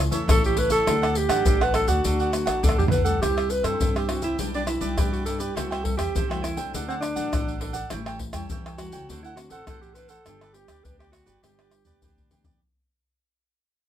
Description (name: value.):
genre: samba and choro.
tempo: 102 BPM.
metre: 4/4.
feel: straight.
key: G major.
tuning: A4 = 445 Hz.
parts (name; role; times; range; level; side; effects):
nylon-string guitar; accompaniment; 0.0-12.6 s; G2 to G4; -35 LUFS; left 4 dB; none.
upright bass; bass; 0.0-12.5 s; G1 to G2; -30 LUFS; equal; none.
cavaquinho; accompaniment; 0.1-12.6 s; D4 to G5; -31 LUFS; right 4 dB; none.
tube shaker, pandeiro, surdo and tamborim; percussion; 0.1-12.6 s; none; -25 LUFS; left 1 dB; none.
mellow alto saxophone; melody; 0.3-12.3 s; C4 to B4; -26 LUFS; right 1 dB; none.
room: moderate studio reverb, RT60 0.5 s.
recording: band playing live in one room.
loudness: -22 LUFS.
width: side -10 dB against mid.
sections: 0.0-12.6 A section.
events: fade-out 0.4-12.6; drum fill 2.5-3.2, 11.4-12.6.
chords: 0.0 A; 0.9 D; 3.2 C; 4.4 Em7/B; 5.6 Am7/C; 6.7 D; 7.9 A7; 9.1 D7; 10.3 G.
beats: 0.28 | 0.87 1.46 2.04 2.63 | 3.22 3.81 4.39 4.98 | 5.57 6.15 6.74 7.33 | 7.91 8.50 9.09 9.67 | 10.26 10.85 11.43 12.02.